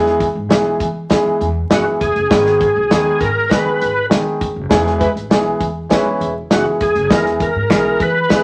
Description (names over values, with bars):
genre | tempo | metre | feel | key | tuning
uptempo 1960s-style soul | 100 BPM | 4/4 | straight | unclear | A4 = 441 Hz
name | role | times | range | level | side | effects
warm grand piano | accompaniment | 0.0-8.4 s | D#3 to G#4 | -20 LUFS | equal | none
upright bass | bass | 0.0-8.2 s | E1 to E3 | -26 LUFS | equal | none
natural country drum kit | drums | 0.1-8.4 s | hi-hat, kick drum, snare drum | -19 LUFS | equal | none
overdriven tonewheel organ | melody | 1.7-8.4 s | F#4 to B4 | -19 LUFS | equal | chorus vibrato, slow rotary speaker
mellow horn section | second line | 5.0-6.3 s | G#3 to B4 | -22 LUFS | equal | none
finger snaps | percussion | 7.7-7.8 s | none | -29 LUFS | equal | none
room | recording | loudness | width
wet studio reverb, RT60 0.6 s | vinyl crackle | -16 LUFS | mono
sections
0.0-8.4 A section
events
band accent 4.7-7.1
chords
0.0 E; 2.3 G#m; 4.7 E